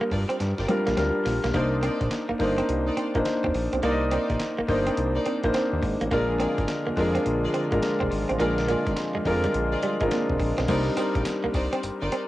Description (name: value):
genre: R&B, new jack swing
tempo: 105 BPM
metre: 4/4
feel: swing 64% on 16ths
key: C minor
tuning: A4 = 440 Hz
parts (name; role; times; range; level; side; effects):
- warm concert grand piano; accompaniment; 0.0-12.3 s; G3 to Eb5; -25 LUFS; left 1 dB; cassette tape
- direct-recorded clean electric guitar; riff; 0.0-12.2 s; G3 to C4; -32 LUFS; right 2 dB; lush chorus, cassette tape
- warm chamber string section; stabs; 0.1-12.2 s; Eb4 to D5; -34 LUFS; equal; cassette tape, tape echo
- fat analog bass; bass; 0.1-12.1 s; G1 to G2; -28 LUFS; equal; tube saturation
- dusty soul sampler-style drum kit; drums; 0.1-12.3 s; crash cymbal, handclaps, hi-hat, kick drum, snare drum, tambourine; -34 LUFS; equal; cassette tape
- brassy analog pad; sustained chords; 6.1-10.7 s; D3 to F4; -34 LUFS; right 1 dB; none
room: wet spring reverb, RT60 2.5 s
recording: home recording on cassette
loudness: -22 LUFS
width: side -16 dB against mid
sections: 0.0-1.5 A section; 1.5-10.7 B section; 10.7-12.3 C section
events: drum fill 0.4-1.5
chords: 0.0 Gm7; 1.5 Cm9; 6.1 Bb7; 10.7 Cm9